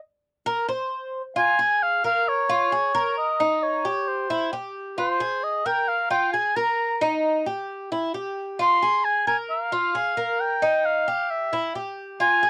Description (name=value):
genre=latin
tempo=133 BPM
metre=4/4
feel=straight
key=F minor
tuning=A4 = 440 Hz
part: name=Cuban tres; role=arpeggios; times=0.5-12.5 s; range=Eb4 to C5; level=-28 LUFS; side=equal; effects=none
part: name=warm oboe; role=melody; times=1.4-12.5 s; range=C5 to C6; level=-24 LUFS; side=equal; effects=none
room=moderate booth ambience, RT60 0.2 s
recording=dry, close 1970s-style studio recording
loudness=-24 LUFS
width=mono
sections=0.0-1.4 A section; 1.4-12.5 B section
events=Cuban tres solo 0.0-1.4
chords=0.0 N.C.; 1.4 Fm; 3.2 Eb; 4.1 C; 5.0 Bb5; 6.8 Eb; 7.7 Em; 8.6 Bb5; 10.4 Eb; 11.3 Em